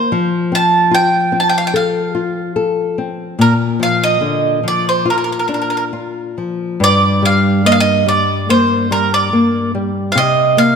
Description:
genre	fado-style ballad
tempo	72 BPM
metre	4/4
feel	rubato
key	Bb major, G minor from 6.8 s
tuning	A4 = 440 Hz
part	bowl-back mandolin	melody	0.0-10.8 s	Bb4 to A5	-14 LUFS	right 3 dB	none
part	nylon-string guitar	accompaniment	0.0-10.8 s	G2 to A4	-16 LUFS	left 3 dB	none
room	moderate concert hall reverb, RT60 1.9 s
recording	none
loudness	-12 LUFS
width	side -6 dB against mid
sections	0.0-6.8 A section; 6.8-10.8 B section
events	none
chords	0.1 F; 3.4 Bb; 6.8 Gm; 10.2 Cm7

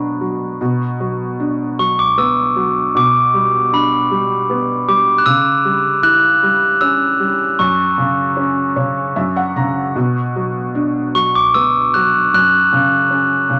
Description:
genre	children's music, lullaby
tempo	77 BPM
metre	3/4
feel	rubato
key	B minor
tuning	A4 = 440 Hz
part	felt-muted upright piano	accompaniment	0.0-13.6 s	F#2 to A#5	-22 LUFS	equal	none
part	glockenspiel with soft plastic mallets	melody	1.8-13.5 s	B5 to F#6	-16 LUFS	equal	none
room	moderate studio reverb, RT60 0.7 s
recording	none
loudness	-15 LUFS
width	mono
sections	0.6-13.6 A section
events	felt piano fill 8.4-10.0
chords	0.0 Bm; 3.0 G/B; 5.2 C#dim; 7.6 F#5; 10.0 Bm; 12.3 F#5

